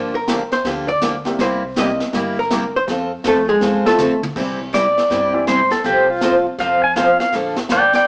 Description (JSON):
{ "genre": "country, western swing", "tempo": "162 BPM", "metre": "4/4", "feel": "swing 64% on 8ths", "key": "F major", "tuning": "A4 = 439 Hz", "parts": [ { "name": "archtop guitar, miked and amplified", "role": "second line", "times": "0.0-4.2 s", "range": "Ab3 to Eb5", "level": "-20 LUFS", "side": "equal", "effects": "none" }, { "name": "picked steel-string acoustic guitar", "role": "accompaniment", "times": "0.0-7.8 s", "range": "C3 to C5", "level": "-23 LUFS", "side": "equal", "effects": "none" }, { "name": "upright bass", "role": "bass", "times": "0.0-8.0 s", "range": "G1 to G2", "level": "-38 LUFS", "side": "equal", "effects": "none" }, { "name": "vintage brush drum kit", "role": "drums", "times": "0.3-8.1 s", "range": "brushed snare drum, crash cymbal, hi-hat, kick drum, snare drum, toms", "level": "-27 LUFS", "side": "equal", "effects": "none" }, { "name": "warm upright piano", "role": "accompaniment", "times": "1.3-7.2 s", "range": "E3 to C5", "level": "-28 LUFS", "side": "equal", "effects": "none" }, { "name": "pedal steel guitar", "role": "second line", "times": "4.7-8.1 s", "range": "F4 to Ab5", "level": "-18 LUFS", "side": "equal", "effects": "none" } ], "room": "moderate studio reverb, RT60 0.9 s", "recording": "band playing live in one room, small speaker sound", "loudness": "-17 LUFS", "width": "mono", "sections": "0.0-4.4 A section; 4.4-8.1 A section", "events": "hollow-body jazz guitar solo 0.0-4.4; drum fill 3.6-4.4; pedal steel guitar solo 4.4-8.1", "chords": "0.0 Gm7; 1.4 C7; 2.9 F; 4.4 C; 5.9 F/C; 7.3 Bbmaj7" }